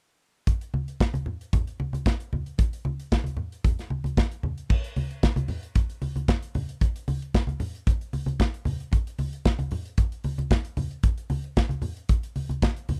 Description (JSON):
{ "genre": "disco", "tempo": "114 BPM", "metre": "4/4", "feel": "straight", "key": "none", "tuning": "none", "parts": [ { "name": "modern studio drum kit", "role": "drums", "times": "0.5-13.0 s", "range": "crash cymbal, hi-hat, kick drum, snare drum", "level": "-25 LUFS", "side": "equal", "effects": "none" }, { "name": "congas", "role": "percussion", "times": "0.7-13.0 s", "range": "none", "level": "-32 LUFS", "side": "equal", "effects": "none" } ], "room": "little or no reverb", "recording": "dry, close 1970s-style studio recording", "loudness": "-27 LUFS", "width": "mono", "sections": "0.5-4.7 A section; 4.7-13.0 B section", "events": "none", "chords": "none" }